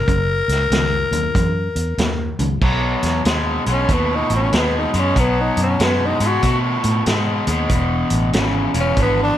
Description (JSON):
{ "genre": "electric blues shuffle", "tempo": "94 BPM", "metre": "4/4", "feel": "swing 64% on 8ths", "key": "B major", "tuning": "A4 = 440 Hz", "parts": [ { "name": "growling tenor saxophone", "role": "melody", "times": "0.0-9.4 s", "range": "B3 to A#4", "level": "-21 LUFS", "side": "left 2 dB", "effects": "none" }, { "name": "cranked stack guitar", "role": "riff", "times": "0.0-9.4 s", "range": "E2 to A3", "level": "-21 LUFS", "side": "left 1 dB", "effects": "overdrive" }, { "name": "vintage muted fingered electric bass", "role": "bass", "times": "0.0-9.3 s", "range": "E1 to B2", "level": "-21 LUFS", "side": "right 1 dB", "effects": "none" }, { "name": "vintage drum kit", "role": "drums", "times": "0.1-9.2 s", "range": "crash cymbal, hi-hat, kick drum, snare drum", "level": "-22 LUFS", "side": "right 1 dB", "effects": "none" } ], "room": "light reverb", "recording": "none", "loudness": "-16 LUFS", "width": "side -11 dB against mid", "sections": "0.0-2.6 A section; 2.6-9.4 B section", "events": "tenor saxophone solo 2.6-9.4", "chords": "0.1 F#7; 2.6 B7; 7.7 E7", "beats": "| 0.08 0.71 1.35 1.99 | 2.62 3.26 3.89 4.53 | 5.16 5.80 6.43 7.07 | 7.71 8.34 8.98" }